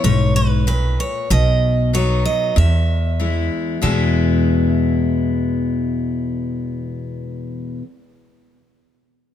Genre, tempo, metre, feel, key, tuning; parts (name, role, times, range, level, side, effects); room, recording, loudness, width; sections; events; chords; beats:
honky-tonk and classic country; 95 BPM; 4/4; straight; E major; A4 = 440 Hz
picked steel-string acoustic guitar; melody; 0.0-7.8 s; B4 to E5; -23 LUFS; right 3 dB
picked steel-string acoustic guitar; accompaniment; 0.0-7.8 s; E2 to F#4; -20 LUFS; left 3 dB
upright bass; bass; 0.0-7.8 s; B1 to E2; -18 LUFS; right 1 dB
little or no reverb; -16 LUFS; side -10 dB against mid
0.0-3.8 A section; 3.8-6.4 B section
0.0 E (rootless); 1.3 B; 2.6 E
0.04 0.67 | 1.30 1.93 2.56 3.20 | 3.83 4.46 5.09 5.72